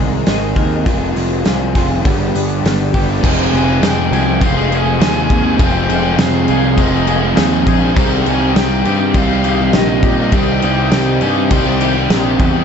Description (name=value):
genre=rock, shoegaze and dream pop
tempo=102 BPM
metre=4/4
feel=straight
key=unclear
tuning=A4 = 440 Hz
part: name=shimmering ambient pad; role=sustained chords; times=0.0-12.6 s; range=G4 to Eb6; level=-26 LUFS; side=left 2 dB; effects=chorus, built-in reverb, phaser
part: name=twangy electric guitar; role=arpeggios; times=0.0-12.6 s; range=G3 to Bb4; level=-28 LUFS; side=right 2 dB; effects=none
part: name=overdriven electric guitar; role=riff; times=0.0-12.6 s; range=F2 to Ab4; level=-20 LUFS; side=left 13 dB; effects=ensemble chorus
part: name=overdriven semi-hollow guitar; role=riff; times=0.0-12.6 s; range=F2 to Ab4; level=-20 LUFS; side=right 11 dB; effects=reverse reverb
part: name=fuzz picked electric bass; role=bass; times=0.0-12.6 s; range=F1 to Bb2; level=-18 LUFS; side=equal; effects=overdrive
part: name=loose indie drum kit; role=drums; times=0.3-12.5 s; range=crash cymbal, hi-hat, kick drum, snare drum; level=-17 LUFS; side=equal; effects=none
part: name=overdriven electric guitar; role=riff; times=3.2-12.6 s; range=F2 to C4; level=-22 LUFS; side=right 1 dB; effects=none
part: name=breathy bright concert flute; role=melody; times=3.5-12.4 s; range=Eb5 to Ab5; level=-23 LUFS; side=left 1 dB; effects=slapback echo
room=small room ambience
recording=dark, warm production, nothing above 7.9 kHz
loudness=-12 LUFS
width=side -7 dB against mid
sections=0.0-3.2 A section; 3.2-12.6 B section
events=none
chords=0.0 Abadd9; 0.9 Fmadd9; 2.0 G; 3.2 Fm7; 8.0 Cm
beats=0.26 | 0.86 1.45 2.05 2.64 | 3.24 3.83 4.42 5.01 | 5.60 6.19 6.78 7.37 | 7.96 8.56 9.15 9.74 | 10.33 10.92 11.51 12.10